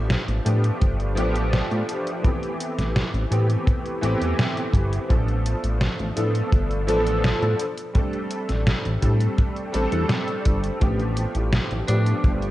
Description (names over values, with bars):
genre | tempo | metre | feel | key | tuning
vaporwave | 84 BPM | 4/4 | straight | unclear | A4 = 440 Hz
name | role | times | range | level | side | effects
clear electric grand piano | accompaniment | 0.0-12.5 s | E3 to A4 | -26 LUFS | equal | ensemble chorus, analog delay
chorused synth bass | bass | 0.0-12.5 s | G1 to A2 | -23 LUFS | equal | none
detuned 8-bit digital drum machine | drums | 0.1-12.5 s | hi-hat, snare drum | -25 LUFS | equal | small room reverb, gated reverb
kick drum | drums | 0.8-12.4 s | none | -20 LUFS | equal | small room reverb
lightly driven lead guitar | melody | 11.9-12.3 s | D4 | -30 LUFS | left 1 dB | vintage 12-bit sampler grit
room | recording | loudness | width
light reverb | cassette tape | -20 LUFS | side -15 dB against mid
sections
0.0-12.5 A section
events
none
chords
0.0 G9/A; 2.2 Am9; 5.1 Bm7b5/A; 7.6 D7sus4/A; 10.8 G9/A